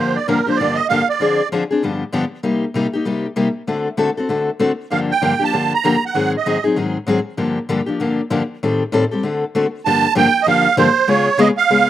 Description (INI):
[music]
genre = jazz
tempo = 194 BPM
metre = 4/4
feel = swing 60% on 8ths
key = G minor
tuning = A4 = 442 Hz
[part]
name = musette accordion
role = melody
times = 0.0-1.5, 4.9-6.6, 9.9-11.9 s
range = Bb4 to Bb5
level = -15 LUFS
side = right 6 dB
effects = none
[part]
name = picked steel-string acoustic guitar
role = accompaniment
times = 0.0-11.9 s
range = G2 to A4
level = -17 LUFS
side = left 3 dB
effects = none
[sound]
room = little or no reverb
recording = recorded outdoors, with no room sound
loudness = -15 LUFS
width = side -12 dB against mid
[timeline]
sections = 0.0-9.8 A section; 9.8-11.9 B section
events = none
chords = 0.0 Gm7; 1.2 Dm7b5; 1.8 G7; 2.4 Cm7; 3.7 D7; 4.9 Gm7; 6.1 Ab7; 7.4 Gm7; 8.6 Am7b5; 9.2 D7; 9.8 Gm7; 11.1 C#7